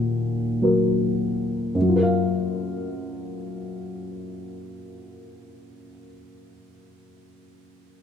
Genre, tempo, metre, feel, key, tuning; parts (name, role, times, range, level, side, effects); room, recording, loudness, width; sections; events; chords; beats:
classical; 53 BPM; 4/4; rubato; F# major; A4 = 439 Hz
dark upright piano; accompaniment; 0.0-8.0 s; F#2 to E#5; -23 LUFS; left 2 dB
wet recital hall reverb, RT60 1.5 s; recorded in a church or concert hall; -22 LUFS; side -7 dB against mid
0.0-1.7 A section; 1.7-6.3 B section
slowing down 0.0-1.7
0.0 D#m; 1.7 F#maj7
0.61 | 1.75 2.88 4.02 5.16